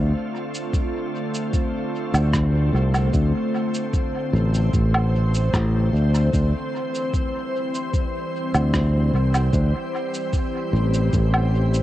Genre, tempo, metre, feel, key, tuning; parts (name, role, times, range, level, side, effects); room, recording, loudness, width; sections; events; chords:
ambient dub; 75 BPM; 4/4; straight; D minor; A4 = 441 Hz
soft additive organ-like pad; sustained chords; 0.0-11.8 s; D3 to C5; -26 LUFS; equal; ensemble chorus, built-in reverb
fingered electric bass; bass; 0.0-11.8 s; A1 to D2; -18 LUFS; equal
electronic cabasa, woodblock and rim click; drums; 0.5-11.8 s; -28 LUFS; right 1 dB; overdrive, cassette tape, dub echo
electronic kick drum; drums; 0.7-11.3 s; -24 LUFS; equal; overdrive, cassette tape
digital ambience; home recording on cassette; -19 LUFS; side -14 dB against mid
0.0-11.8 A section
0.0 Dm7; 6.3 C